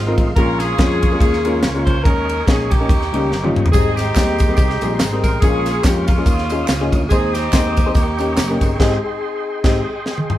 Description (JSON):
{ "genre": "uptempo gospel", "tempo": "142 BPM", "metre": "4/4", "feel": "swing 56% on 8ths", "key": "Ab major", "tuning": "A4 = 440 Hz", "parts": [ { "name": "mellow saxophone section", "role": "melody", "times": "0.0-10.1 s", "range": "Ab3 to C5", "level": "-22 LUFS", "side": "equal", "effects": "none" }, { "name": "tonewheel organ", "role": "sustained chords", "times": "0.0-10.4 s", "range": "Ab3 to Eb6", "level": "-28 LUFS", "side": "right 1 dB", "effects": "slow rotary speaker, chorus vibrato" }, { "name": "fingered electric bass", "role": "bass", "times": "0.0-9.8 s", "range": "Gb1 to F2", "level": "-22 LUFS", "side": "equal", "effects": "none" }, { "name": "clear upright piano", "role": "accompaniment", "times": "0.1-9.8 s", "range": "Ab2 to C5", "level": "-22 LUFS", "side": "left 2 dB", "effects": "none" }, { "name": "tight funk drum kit", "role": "drums", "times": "0.2-10.4 s", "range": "crash cymbal, kick drum, ride cymbal, snare drum, toms", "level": "-17 LUFS", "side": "equal", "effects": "none" }, { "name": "tambourine and handclaps", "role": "percussion", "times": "3.7-8.7 s", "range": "none", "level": "-32 LUFS", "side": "right 3 dB", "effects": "none" } ], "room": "moderate large studio reverb, RT60 0.8 s", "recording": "band playing live in one room", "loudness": "-14 LUFS", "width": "side -13 dB against mid", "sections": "0.0-10.4 A section", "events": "drum fill 3.3-3.7, 10.1-10.4; band accent 8.8-10.4", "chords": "0.4 Bbm7; 2.1 Eb7sus4; 2.9 Eb7; 3.7 Abmaj7; 5.4 Bbm7; 6.3 Eb9sus4; 7.1 Ab/Eb; 8.0 Eb7; 8.8 Abmaj7" }